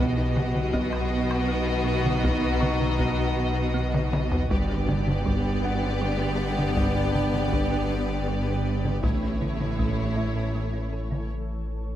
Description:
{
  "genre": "cinematic, hybrid orchestral and electronic film score",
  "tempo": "53 BPM (dotted quarters)",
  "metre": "6/8",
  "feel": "straight",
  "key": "unclear",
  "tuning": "A4 = 442 Hz",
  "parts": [
    { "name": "rich symphonic violin section", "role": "melody", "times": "0.0-11.3 s", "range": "C#5 to D#5", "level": "-36 LUFS", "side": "left 2 dB", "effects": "none" },
    { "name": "rich symphonic violin section", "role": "second line", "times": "0.0-11.3 s", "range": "E4 to G4", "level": "-34 LUFS", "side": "left 1 dB", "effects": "none" },
    { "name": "warm symphonic viola section", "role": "accompaniment", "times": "0.0-11.3 s", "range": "A3 to B3", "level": "-35 LUFS", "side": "right 2 dB", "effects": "none" },
    { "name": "mellow French horn section", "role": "sustained chords", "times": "0.0-11.3 s", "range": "B3 to E4", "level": "-33 LUFS", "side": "left 5 dB", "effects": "none" },
    { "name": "shimmering ambient pad", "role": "sustained chords", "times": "0.0-11.3 s", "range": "D3 to C#5", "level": "-34 LUFS", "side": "equal", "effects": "chorus, built-in reverb" },
    { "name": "thumb-piano-like synth pluck", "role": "arpeggios", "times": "0.0-11.2 s", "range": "G3 to B4", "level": "-37 LUFS", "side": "right 3 dB", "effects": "none" },
    { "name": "rich studio cello section", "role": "bass", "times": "0.0-11.3 s", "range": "G2 to B2", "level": "-31 LUFS", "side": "right 2 dB", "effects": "none" },
    { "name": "warm sub bass", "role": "bass", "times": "0.0-12.0 s", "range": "G1 to B1", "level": "-32 LUFS", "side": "left 1 dB", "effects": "none" },
    { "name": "warm symphonic double bass section", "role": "bass", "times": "0.0-11.3 s", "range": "G1 to B1", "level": "-30 LUFS", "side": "right 2 dB", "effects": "none" },
    { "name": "solo taiko drums", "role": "drums", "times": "0.4-11.3 s", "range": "none", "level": "-29 LUFS", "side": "left 1 dB", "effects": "none" },
    { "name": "felt-muted upright piano", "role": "texture", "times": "0.7-12.0 s", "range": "D4 to C#6", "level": "-41 LUFS", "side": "left 2 dB", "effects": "none" }
  ],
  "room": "light reverb",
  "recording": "none",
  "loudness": "-23 LUFS",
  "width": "side -12 dB against mid",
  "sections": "0.0-12.0 A section",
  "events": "drum fill 3.9-4.5; break 11.3-12.0",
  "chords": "0.0 B; 4.5 G; 9.0 A"
}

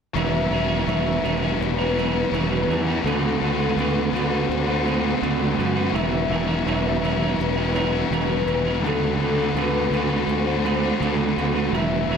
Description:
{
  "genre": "rock",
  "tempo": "83 BPM",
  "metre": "4/4",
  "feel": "straight",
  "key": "E minor",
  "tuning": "A4 = 440 Hz",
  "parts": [
    { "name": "biting overdriven guitar", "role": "riff", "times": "0.1-12.2 s", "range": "D3 to F#4", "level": "-26 LUFS", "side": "left 10 dB", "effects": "wide subtle chorus" },
    { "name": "clean electric guitar", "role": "riff", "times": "0.1-12.2 s", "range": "D3 to C5", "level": "-25 LUFS", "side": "right 9 dB", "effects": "reverse reverb" },
    { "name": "warm velvety synth lead", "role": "melody", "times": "0.2-12.2 s", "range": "A4 to E5", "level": "-28 LUFS", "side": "left 4 dB", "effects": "chorus, slapback echo" },
    { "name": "picked twelve-string acoustic guitar", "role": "arpeggios", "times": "0.2-12.2 s", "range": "E3 to G4", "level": "-34 LUFS", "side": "right 9 dB", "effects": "wide subtle chorus, slapback echo" },
    { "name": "fuzz fingered electric bass", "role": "bass", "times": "0.2-12.2 s", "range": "E1 to F#2", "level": "-25 LUFS", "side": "left 1 dB", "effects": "overdrive" }
  ],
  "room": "moderate huge ambient reverb, RT60 4.2 s",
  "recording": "none",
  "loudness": "-20 LUFS",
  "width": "side -7 dB against mid",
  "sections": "0.2-12.2 A section",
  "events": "none",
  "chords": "0.2 Em7; 3.1 D7; 5.9 Em7; 8.8 D7"
}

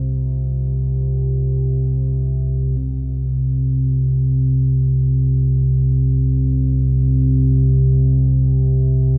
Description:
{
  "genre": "dark ambient drone",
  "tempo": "free time",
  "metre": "none",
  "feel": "none",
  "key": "unclear",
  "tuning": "A4 = 440 Hz",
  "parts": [
    { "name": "deep rumbling drone", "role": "drone", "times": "0.0-9.2 s", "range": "C2 to C3", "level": "-17 LUFS", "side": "equal", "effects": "built-in reverb, subtle chorus" },
    { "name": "bronze singing bowl", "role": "texture", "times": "0.0-9.2 s", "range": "C4 to F4", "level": "-34 LUFS", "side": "equal", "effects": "none" }
  ],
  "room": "moderate huge ambient reverb, RT60 7.9 s",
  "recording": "nothing above 7.7 kHz",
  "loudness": "-17 LUFS",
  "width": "mono",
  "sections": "0.0-2.8 A section; 2.8-9.2 B section",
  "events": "none",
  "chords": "0.0 F5/C"
}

